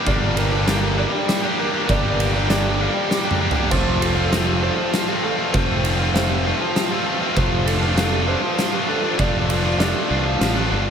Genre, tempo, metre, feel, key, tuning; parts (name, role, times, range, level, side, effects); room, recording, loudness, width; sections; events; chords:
post-rock; 99 BPM; 3/4; straight; G minor; A4 = 443 Hz
pedal steel guitar; sustained chords; 0.0-10.9 s; F4 to A5; -34 LUFS; right 1 dB
sludgy distorted guitar; riff; 0.0-10.9 s; G2 to G4; -24 LUFS; right 9 dB; overdrive
tight distorted guitar; riff; 0.0-10.9 s; F3 to G4; -23 LUFS; left 8 dB; distortion
felt-muted upright piano; arpeggios; 0.1-10.4 s; A4 to D5; -29 LUFS; right 4 dB; ensemble chorus, diffuse ambient delay
fuzz fingered electric bass; bass; 0.1-10.9 s; F1 to C2; -22 LUFS; equal; overdrive
oversized low-tuned drum kit; drums; 0.1-10.5 s; crash cymbal, kick drum, ride cymbal, snare drum, toms; -23 LUFS; equal
moderate lush hall reverb, RT60 2.5 s; dreamy mix soaked in reverb; -17 LUFS; side -7 dB against mid
0.0-10.9 A section
drum fill 3.1-3.7
0.0 Gm7; 3.7 F6; 7.4 Dm7/F